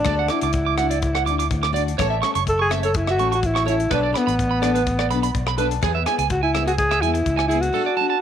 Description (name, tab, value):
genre	highlife guitar band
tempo	125 BPM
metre	4/4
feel	straight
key	unclear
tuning	A4 = 440 Hz
part	breathy alto saxophone	melody	0.0-8.2 s	B3 to A4	-22 LUFS	left 1 dB	tape echo
part	picked steel-string acoustic guitar	accompaniment	0.0-8.1 s	E3 to A4	-28 LUFS	left 12 dB	none
part	tight funk drum kit	drums	0.0-7.7 s	hi-hat, kick drum, rim click	-28 LUFS	left 4 dB	none
part	electric guitar at the edge of break-up	arpeggios	0.1-8.2 s	G#4 to D6	-24 LUFS	right 12 dB	tape echo
part	fingered electric bass	bass	0.1-7.7 s	F#1 to E2	-25 LUFS	equal	none
room	light reverb, small room ambience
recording	1960s-style stereo with parts hard left and right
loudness	-18 LUFS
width	side -9 dB against mid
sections	0.0-8.2 A section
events	none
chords	0.1 D; 2.0 A; 3.9 Bm7; 5.8 E